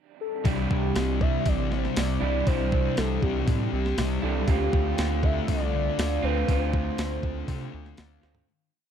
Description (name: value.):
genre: rock, shoegaze and dream pop.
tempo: 120 BPM.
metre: 4/4.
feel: straight.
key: C major.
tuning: A4 = 439 Hz.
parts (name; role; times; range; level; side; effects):
warm velvety synth lead; melody; 0.2-7.9 s; G4 to E5; -32 LUFS; equal; chorus, digital delay.
electric guitar through a small old amp; riff; 0.4-8.5 s; C3 to F4; -32 LUFS; right 12 dB; reverse reverb.
thick fuzz guitar; riff; 0.4-8.5 s; C3 to D4; -30 LUFS; left 10 dB; distortion, wide subtle chorus.
gritty driven synth bass; bass; 0.5-8.4 s; A1 to C3; -29 LUFS; equal; none.
clean 12-bit digital drum machine; drums; 0.5-8.5 s; hi-hat, kick drum, snare drum, toms; -27 LUFS; equal; none.
room: little or no reverb.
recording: dark, warm production.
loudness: -23 LUFS.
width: side -8 dB against mid.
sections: 0.0-0.5 pickup bar; 0.5-8.5 verse.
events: fade-out 6.5-8.5; drum fill 8.2.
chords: 0.5 Cadd9; 4.5 Dm7.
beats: | 0.47 0.97 1.47 1.97 | 2.48 2.98 3.48 3.98 | 4.48 4.98 5.48 5.98 | 6.48 6.98 7.48 7.97.